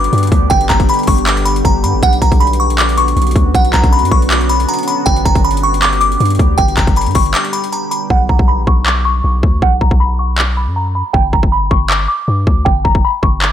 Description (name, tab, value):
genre	hip hop, trap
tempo	158 BPM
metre	4/4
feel	half-time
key	B harmonic minor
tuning	A4 = 440 Hz
part	delicate synth tine bell	melody	0.0-13.5 s	F#5 to D6	-16 LUFS	equal	chorus, phaser, low-pass filter, ping-pong delay
part	deep dark ambient pad	sustained chords	0.0-8.1 s	D3 to G4	-20 LUFS	equal	chorus, built-in reverb
part	long sustained 808-style bass	bass	0.0-13.5 s	G1 to G2	-15 LUFS	equal	none
part	trap drum kit	drums	0.0-13.5 s	handclaps, hi-hat, kick drum	-14 LUFS	equal	overdrive
room	little or no reverb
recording	none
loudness	-10 LUFS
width	side -10 dB against mid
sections	0.0-8.1 A section; 8.1-13.5 B section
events	break 7.3-8.1; hi-hats muted 8.1-13.5; filter sweep on synth bell 8.1-13.5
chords	0.0 G; 2.0 Bmadd9; 5.1 G; 8.1 Bsus2; 11.1 G5